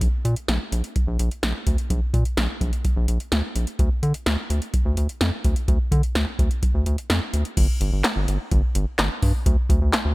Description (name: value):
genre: synth-pop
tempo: 127 BPM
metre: 4/4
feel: straight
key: unclear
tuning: A4 = 441 Hz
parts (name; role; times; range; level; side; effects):
- round analog bass; bass; 0.0-10.1 s; G1 to D3; -22 LUFS; equal; none
- electro analog drum machine; drums; 0.0-10.0 s; crash cymbal, handclaps, hi-hat, kick drum, snare drum; -22 LUFS; equal; none
room: little or no reverb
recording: none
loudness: -20 LUFS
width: side -21 dB against mid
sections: 0.0-7.6 A section; 7.6-10.1 B section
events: none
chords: none